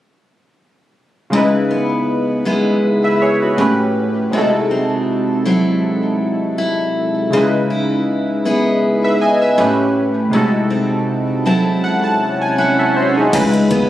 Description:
contemporary R&B; 80 BPM; 4/4; swing 54% on 16ths; C# minor; A4 = 440 Hz
warm analog keys; accompaniment; 1.3-13.9 s; A2 to A5; -16 LUFS; equal; chorus, phaser
picked steel-string acoustic guitar; arpeggios; 1.3-13.9 s; A2 to G#4; -18 LUFS; equal; tape echo
swell; sound effects; 11.9-13.3 s; -22 LUFS; right 1 dB
long sustained 808-style bass; bass; 13.3-13.9 s; C#2; -20 LUFS; equal
smooth R&B drum kit; drums; 13.3-13.9 s; crash cymbal, hi-hat, kick drum; -23 LUFS; equal; overdrive
light reverb; recorded on a phone in the room, studio reverb; -13 LUFS; side -13 dB against mid
1.3-13.3 A section
synth keys fill 11.1-13.3; swell 11.9-13.3
1.3 C#m7; 3.6 A9; 4.3 G#7b9b13/B#; 7.3 C#m7; 9.6 A9; 10.3 G#7b9b13/B#; 13.3 C#m7

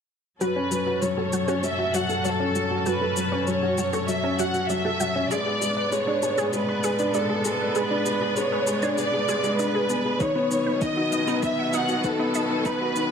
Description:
piano and strings electronica; 98 BPM; 4/4; straight; F# minor; A4 = 440 Hz
warm studio violin section; melody; 0.4-13.1 s; A4 to F#5; -26 LUFS; right 1 dB; low-pass filter
rich string quartet; sustained chords; 0.4-13.1 s; F#2 to B4; -30 LUFS; left 1 dB; sidechain pumping
wide unison pluck; arpeggios; 0.4-12.7 s; D#4 to B5; -33 LUFS; right 3 dB; phaser, sidechain pumping, ping-pong delay
warm upright piano; riff; 0.4-13.1 s; D#3 to B4; -26 LUFS; left 2 dB
shaker; drums; 0.4-13.1 s; -35 LUFS; left 4 dB; overdrive, small room ambience
electronic kick drum; drums; 10.2-12.8 s; -30 LUFS; right 1 dB; overdrive, small room ambience
moderate lush hall reverb, RT60 1.6 s, small room ambience; high-pass filter; -22 LUFS; side -7 dB against mid
0.4-13.1 A section
build-up 0.4-13.1
0.4 F#m; 5.3 G#dim; 10.2 B

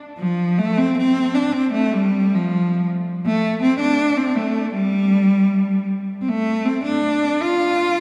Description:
andean folk; 79 BPM; 2/4; straight; D minor pentatonic; A4 = 441 Hz
clear cello; solo; 0.2-8.0 s; F3 to F4; -19 LUFS; equal; tape echo
wet concert hall reverb, RT60 2.5 s; heard from further back in the room; -19 LUFS; mono
0.2-8.0 A section

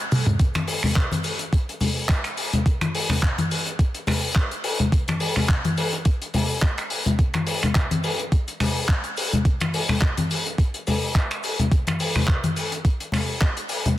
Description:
nu-disco; 106 BPM; 4/4; swing 55% on 16ths
cloth-damped thuddy drum kit; drums; 0.1-14.0 s; finger snaps, handclaps, hi-hat, shaker, toms; -25 LUFS; left 1 dB; soft clipping on snare
congas; percussion; 0.3-14.0 s; -24 LUFS; left 1 dB
electronic kick drum; drums; 0.4-13.5 s; -19 LUFS; equal
light reverb, small room ambience; dense, heavily limited modern master; -20 LUFS; side -14 dB against mid
0.0-14.0 A section
break 0.0-0.4; drum fill 0.1

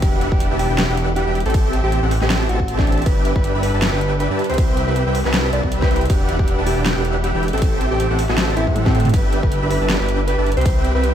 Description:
future bass; 158 BPM; 4/4; swing 55% on 16ths, half-time; G major; A4 = 435 Hz
mellow electric guitar; melody; 0.0-11.1 s; C4 to D5; -25 LUFS; right 1 dB; sidechain pumping, digital delay
dark chamber string section; sustained chords; 0.0-11.1 s; C3 to F#5; -32 LUFS; equal
dense compressed supersaw; riff; 0.0-11.1 s; C4 to B5; -22 LUFS; equal; sidechain pumping
wide detuned saw bass; bass; 0.0-11.1 s; E1 to A2; -20 LUFS; equal; chorus, sidechain pumping
big-room dance drum kit; drums; 0.0-11.1 s; crash cymbal, hi-hat, snare drum, toms; -25 LUFS; equal
electronic kick drum; drums; 0.0-10.7 s; -18 LUFS; equal
little or no reverb; -16 LUFS; side -10 dB against mid
0.0-11.1 A section
drum fill 8.8-9.1
0.0 Em9; 1.5 Am7; 3.1 G6; 4.6 Cmaj7; 6.1 Em9; 7.6 Am7; 9.1 G6

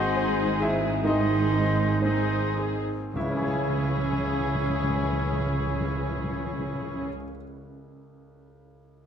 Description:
classical, romantic movement for piano and orchestra; 51-72 BPM; 4/4; rubato; C# minor; A4 = 441 Hz
clear grand piano; melody; 0.0-9.1 s; C#2 to G#5; -29 LUFS; equal
muted studio violin section; melody; 0.0-7.1 s; B#4 to C#5; -40 LUFS; left 6 dB
clear oboe; second line; 0.0-7.1 s; D#4 to E4; -35 LUFS; right 1 dB
muted studio violin section; second line; 0.0-7.1 s; G#4; -34 LUFS; left 3 dB
silver concert flute; second line; 0.0-7.1 s; B#5 to C#6; -37 LUFS; left 3 dB
muted studio viola section; accompaniment; 0.0-7.1 s; C#4 to D#4; -34 LUFS; right 2 dB
mellow French horn section; sustained chords; 0.0-7.1 s; D#3 to C#4; -35 LUFS; left 3 dB
muted studio cello section; bass; 0.0-7.1 s; G#2 to C#3; -33 LUFS; right 3 dB
muted studio double bass section; bass; 0.0-7.1 s; G#1 to C#2; -33 LUFS; right 3 dB
timpani; percussion; 3.1-7.1 s; C#3; -33 LUFS; left 1 dB
moderate scoring stage reverb, RT60 1.6 s; -24 LUFS; side -8 dB against mid
0.0-3.1 A section; 3.1-7.5 B section
slowing down 0.0-3.1
0.0 G#7; 3.1 C#m

